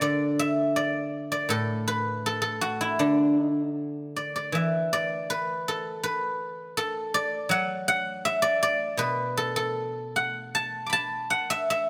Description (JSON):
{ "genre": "chinese traditional, Chinese solo plucked strings", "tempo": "80 BPM", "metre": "2/4", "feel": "uneven beats, rubato", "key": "D gong mode", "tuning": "A4 = 440 Hz", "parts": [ { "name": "guzheng", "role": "solo", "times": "0.0-11.9 s", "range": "A2 to D6", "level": "-27 LUFS", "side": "equal", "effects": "none" } ], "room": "light reverb", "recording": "close, detailed microphones", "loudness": "-27 LUFS", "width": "mono", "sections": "0.0-4.5 A section; 4.5-11.9 B section", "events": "none", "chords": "none" }